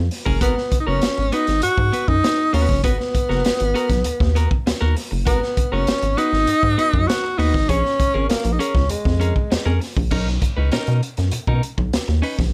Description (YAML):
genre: funk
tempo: 99 BPM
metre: 4/4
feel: straight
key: G# dorian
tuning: A4 = 440 Hz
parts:
  - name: rubbery square bass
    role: bass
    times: 0.0-12.5 s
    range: F#1 to B2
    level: -23 LUFS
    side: equal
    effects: none
  - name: raw garage drum kit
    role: drums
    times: 0.1-12.5 s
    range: crash cymbal, hi-hat, kick drum, snare drum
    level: -25 LUFS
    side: equal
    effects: none
  - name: clean electric guitar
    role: accompaniment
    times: 0.3-12.4 s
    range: B3 to C#5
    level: -29 LUFS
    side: equal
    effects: none
  - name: warm tenor saxophone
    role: melody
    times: 0.4-9.8 s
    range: G#3 to F#4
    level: -23 LUFS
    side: equal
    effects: plate reverb
room: light reverb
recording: none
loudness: -19 LUFS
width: mono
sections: 0.0-10.1 A section; 10.1-12.5 B section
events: none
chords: 0.4 G#m9; 7.7 A#m7; 10.1 Bmaj9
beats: | 0.41 1.02 1.63 2.23 | 2.84 3.45 4.05 4.66 | 5.27 5.87 6.48 7.08 | 7.69 8.30 8.90 9.51 | 10.11 10.72 11.33 11.93